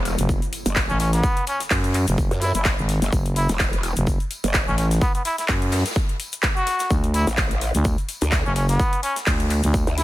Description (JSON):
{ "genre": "bass house", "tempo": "127 BPM", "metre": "4/4", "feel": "swing 56% on 16ths", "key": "unclear", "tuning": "A4 = 440 Hz", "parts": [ { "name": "growl bass", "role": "bass", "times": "0.0-10.0 s", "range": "E1 to F#2", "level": "-23 LUFS", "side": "equal", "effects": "chorus, sidechain pumping" }, { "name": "impact", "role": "sound effects", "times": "0.0-1.2 s", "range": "none", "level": "-36 LUFS", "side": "equal", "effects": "none" }, { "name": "big-room dance drum kit", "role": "drums", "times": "0.1-10.0 s", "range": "handclaps, hi-hat", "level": "-26 LUFS", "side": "equal", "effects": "studio reverb" }, { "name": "gated 80s drum kit", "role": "drums", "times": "0.1-10.0 s", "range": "hi-hat, snare drum, tambourine", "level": "-35 LUFS", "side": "left 1 dB", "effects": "sidechain pumping on hats, high-pass filter on hats, studio reverb, high-pass filter on snare, sidechain pumping on perc, high-pass filter on perc, high-pass filter on room" }, { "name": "growling FM bass", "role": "bass", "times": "0.2-9.9 s", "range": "F#1 to F#2", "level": "-21 LUFS", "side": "equal", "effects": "overdrive, sidechain pumping" }, { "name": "tube shaker", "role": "percussion", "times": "0.2-10.0 s", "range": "none", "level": "-37 LUFS", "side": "left 3 dB", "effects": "none" }, { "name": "electronic kick drum", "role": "drums", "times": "0.3-9.8 s", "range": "none", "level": "-23 LUFS", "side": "equal", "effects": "studio reverb" }, { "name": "trumpet with straight mute", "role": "melody", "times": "0.9-10.0 s", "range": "B3 to F#4", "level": "-27 LUFS", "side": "equal", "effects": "dub echo" } ], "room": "small room ambience", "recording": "none", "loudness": "-19 LUFS", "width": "side -16 dB against mid", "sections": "0.0-10.0 A section", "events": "impact 0.0-1.2", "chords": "0.0 N.C.; 6.9 D5" }